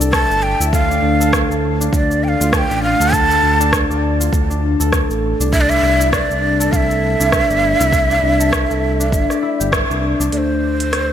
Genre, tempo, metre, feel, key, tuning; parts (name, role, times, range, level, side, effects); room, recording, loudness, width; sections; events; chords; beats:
organic downtempo; 100 BPM; 4/4; swing 58% on 16ths; D minor; A4 = 440 Hz
concert harp; arpeggios; 0.0-11.1 s; A3 to D5; -20 LUFS; left 3 dB; ping-pong delay
smooth synth bass; bass; 0.0-11.1 s; G1 to D2; -19 LUFS; equal; sidechain pumping
afro-pop drum kit; drums; 0.0-11.1 s; hi-hat, rim click, shaker; -22 LUFS; equal
breathy ney; melody; 0.1-11.1 s; C5 to A5; -18 LUFS; right 1 dB; ping-pong delay
electronic kick drum; drums; 0.1-9.9 s; -20 LUFS; equal
bronze singing bowl; texture; 0.7-11.1 s; A3 to A4; -28 LUFS; right 5 dB
light reverb, digital ambience; -13 LUFS; side -10 dB against mid
0.0-10.3 A section
band accent 9.7
0.0 C; 0.7 Dm; 5.5 C; 10.3 D5
0.13 | 0.73 1.33 1.93 2.53 | 3.13 3.73 4.33 4.93 | 5.53 6.13 6.73 7.33 | 7.93 8.53 9.13 9.73 | 10.33 10.93